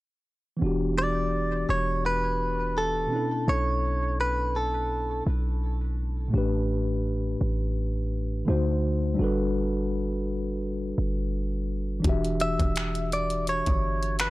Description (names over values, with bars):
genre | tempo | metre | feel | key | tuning
contemporary R&B | 84 BPM | 4/4 | swing 54% on 16ths | E dorian | A4 = 437 Hz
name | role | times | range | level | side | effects
mellow tine electric piano | accompaniment | 0.6-14.3 s | A2 to E5 | -29 LUFS | left 1 dB | slow stereo tremolo
warm 808-style bass | bass | 0.6-14.3 s | E1 to D2 | -28 LUFS | equal | none
direct-recorded clean electric guitar | melody | 1.0-5.2, 12.4-14.3 s | A4 to E5 | -28 LUFS | equal | tape echo
smooth R&B drum kit | drums | 12.0-14.3 s | finger snaps, hi-hat, kick drum | -28 LUFS | equal | none
room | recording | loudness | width
little or no reverb | dry, gritty hardware recording | -24 LUFS | side -19 dB against mid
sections
0.6-14.3 A section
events
none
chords
0.6 Em9; 3.1 Bm11; 6.3 A9sus4; 8.5 D7b9; 9.2 Gmaj9; 12.0 Em9